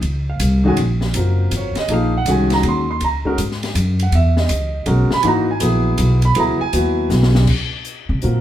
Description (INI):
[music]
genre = modal jazz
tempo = 161 BPM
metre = 3/4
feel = swing 65% on 8ths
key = Bb phrygian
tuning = A4 = 440 Hz
[part]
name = upright bass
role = bass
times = 0.0-8.4 s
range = Gb1 to C3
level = -17 LUFS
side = equal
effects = none
[part]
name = open jazz drum kit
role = drums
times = 0.0-8.3 s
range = crash cymbal, hi-hat, kick drum, ride cymbal, snare drum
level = -26 LUFS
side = left 2 dB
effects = none
[part]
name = warm concert grand piano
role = accompaniment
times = 0.3-8.4 s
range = Eb3 to C6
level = -19 LUFS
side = equal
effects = none
[sound]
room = wet studio reverb, RT60 0.6 s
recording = heard from further back in the room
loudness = -15 LUFS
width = side -12 dB against mid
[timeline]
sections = 0.0-7.5 A section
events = drum fill 7.1-7.5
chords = 0.0 Bbm9; 3.0 Dbm9; 7.5 Bbsus2